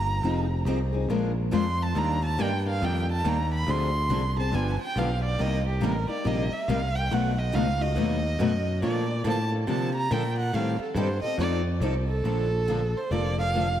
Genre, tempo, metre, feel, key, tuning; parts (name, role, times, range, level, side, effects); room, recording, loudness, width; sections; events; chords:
acoustic string swing (jazz manouche); 140 BPM; 4/4; swing 62% on 8ths; A4 = 440 Hz
warm violin; melody; 0.0-13.8 s; G4 to C6; -30 LUFS; right 3 dB
modern bright picked electric bass; bass; 0.0-13.8 s; F1 to C3; -27 LUFS; equal
picked steel-string acoustic guitar; accompaniment; 0.2-13.7 s; B2 to Bb4; -30 LUFS; left 5 dB
picked steel-string acoustic guitar; accompaniment; 0.2-13.7 s; B2 to B4; -35 LUFS; right 5 dB; analog chorus
moderate lush hall reverb, RT60 3.1 s; dreamy mix soaked in reverb; -24 LUFS; side -10 dB against mid
0.0-12.2 A section; 12.2-13.8 B section
violin solo 0.0-12.2
0.2 Fm7; 1.1 Bb7; 2.0 Ebmaj9; 3.7 Dm7b5; 4.5 G7; 5.4 Cm7; 7.1 B9; 8.8 Bbmaj7; 10.5 Am7b5; 11.4 F7; 12.2 Bbmaj7